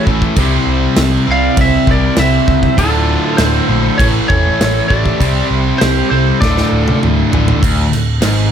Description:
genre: hard rock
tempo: 99 BPM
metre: 4/4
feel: straight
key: D minor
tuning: A4 = 441 Hz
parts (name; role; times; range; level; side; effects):
- lightly driven lead guitar; melody; 0.0-7.0 s; A4 to F5; -18 LUFS; right 2 dB; slapback echo
- dark smooth lead guitar; second line; 0.0-7.0 s; F4 to D5; -25 LUFS; right 4 dB; overdrive
- cranked stack guitar; riff; 0.0-8.5 s; D2 to C4; -18 LUFS; left 9 dB; overdrive
- crunchy overdriven guitar; riff; 0.0-8.5 s; D2 to C5; -21 LUFS; right 1 dB; none
- overdriven electric guitar; riff; 0.0-8.5 s; D2 to C4; -20 LUFS; right 12 dB; none
- overdriven picked electric bass; bass; 0.1-8.5 s; D1 to C#2; -16 LUFS; equal; none
- big rock drum kit; drums; 0.1-8.4 s; crash cymbal, kick drum, snare drum, toms; -17 LUFS; equal; none
room: little or no reverb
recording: none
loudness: -10 LUFS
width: side -8 dB against mid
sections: 0.0-7.6 A section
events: drum fill 6.4-7.6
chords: 0.4 C; 2.8 Dm; 4.0 A; 5.2 C; 6.4 Dm; 7.6 D5

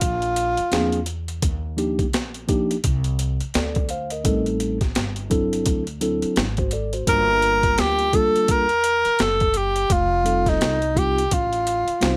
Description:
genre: hip hop, jazz-hop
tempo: 85 BPM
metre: 4/4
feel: swing 60% on 16ths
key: unclear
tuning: A4 = 441 Hz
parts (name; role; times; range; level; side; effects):
- breathy tenor saxophone; melody; 0.0-1.1, 7.1-12.2 s; Eb4 to Bb4; -22 LUFS; equal; none
- upright bass; bass; 0.0-12.2 s; F1 to E2; -30 LUFS; equal; none
- boom bap sampler-style drum kit; drums; 0.0-12.2 s; hi-hat, kick drum, snare drum; -26 LUFS; equal; overdrive
- mellow tine electric piano; accompaniment; 0.7-12.2 s; F3 to F5; -26 LUFS; equal; none
room: little or no reverb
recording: none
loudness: -21 LUFS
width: mono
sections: 0.0-12.2 A section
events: none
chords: 0.0 Bb7; 1.4 Ebmaj7; 4.3 Am7b5; 5.7 D7; 7.1 Gm7; 9.9 F7

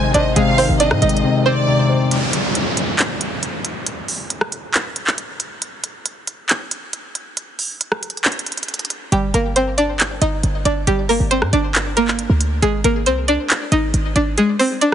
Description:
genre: hip hop, trap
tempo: 137 BPM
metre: 4/4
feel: half-time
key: unclear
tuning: A4 = 440 Hz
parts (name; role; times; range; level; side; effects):
- string-like resonator pluck; melody; 0.0-2.1, 9.1-14.9 s; G3 to Eb5; -18 LUFS; right 1 dB; chorus, phaser, ping-pong delay
- warm symphonic violin section; second line; 0.0-2.1 s; D5 to Ab5; -23 LUFS; equal; ping-pong delay
- dark grand piano; accompaniment; 0.0-2.1 s; C3 to C5; -19 LUFS; left 3 dB; none
- hollow soft pad; sustained chords; 0.0-2.1 s; Eb3 to C5; -29 LUFS; left 1 dB; none
- short 808-style bass; bass; 0.0-1.2, 9.1-14.4 s; G1 to Ab2; -20 LUFS; equal; none
- trap drum kit; drums; 0.1-14.9 s; handclaps, hi-hat, rim click; -20 LUFS; right 1 dB; none
- downlifter; sound effects; 2.1-5.6 s; none; -23 LUFS; equal; none
room: light reverb, digital ambience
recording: heavily compressed radio sound, nothing above 10.9 kHz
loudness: -16 LUFS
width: side -9 dB against mid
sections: 0.0-2.1 A section; 2.1-14.9 B section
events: silent gap 1.2-2.1; break 2.1-9.1; kick muted 14.4-14.9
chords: 0.0 Ab; 2.1 N.C.; 9.1 Gm; 12.6 Ab

